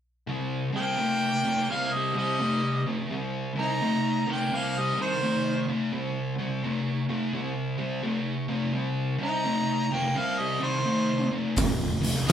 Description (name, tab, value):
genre	blues rock power trio and southern rock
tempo	85 BPM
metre	4/4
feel	swing 64% on 8ths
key	C minor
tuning	A4 = 443 Hz
part	thick fuzz guitar	riff	0.3-12.3 s	F2 to A3	-27 LUFS	left 1 dB	distortion
part	warm harmonica	melody	0.8-12.3 s	C5 to Bb5	-28 LUFS	equal	overdrive
part	biting lead guitar	second line	0.8-12.3 s	Eb3 to Eb4	-33 LUFS	right 4 dB	overdrive
part	fuzz picked electric bass	bass	11.6-12.3 s	F1 to C2	-32 LUFS	equal	overdrive
part	oversized low-tuned drum kit	drums	11.6-12.3 s	hi-hat, kick drum, snare drum	-23 LUFS	equal	none
room	wet studio reverb, RT60 0.7 s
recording	band playing live in one room, faint mains hum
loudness	-25 LUFS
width	side -9 dB against mid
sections	0.3-12.3 A section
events	none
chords	0.3 Cm7; 11.6 F5